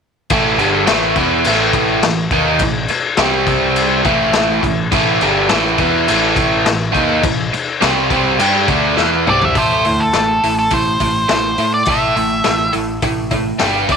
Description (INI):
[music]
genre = garage rock duo or trio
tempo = 104 BPM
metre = 4/4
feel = straight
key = A minor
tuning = A4 = 441 Hz
[part]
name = biting overdriven guitar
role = riff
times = 0.3-14.0 s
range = G2 to A4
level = -15 LUFS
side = right 1 dB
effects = none
[part]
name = growling picked electric bass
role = bass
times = 0.3-14.0 s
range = E1 to A2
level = -23 LUFS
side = right 1 dB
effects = overdrive
[part]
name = raw garage drum kit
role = drums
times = 0.3-14.0 s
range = crash cymbal, hi-hat, kick drum, snare drum, toms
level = -18 LUFS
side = left 4 dB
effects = none
[part]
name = octave-fuzz lead guitar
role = melody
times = 9.3-14.0 s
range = A4 to E5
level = -16 LUFS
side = equal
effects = distortion
[sound]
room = moderate spring reverb, RT60 2.5 s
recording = 1960s-style stereo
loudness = -12 LUFS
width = side -6 dB against mid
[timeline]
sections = 0.3-9.6 A section; 9.6-14.0 B section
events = drum fill 9.0-9.6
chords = 0.3 A5; 3.2 C5; 4.1 Am; 13.6 G5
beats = | 0.32 0.89 1.47 2.04 | 2.62 3.19 3.77 4.35 | 4.93 5.50 6.08 6.66 | 7.24 7.82 8.40 8.98 | 9.56 10.14 10.72 11.30 | 11.88 12.46 13.04 13.61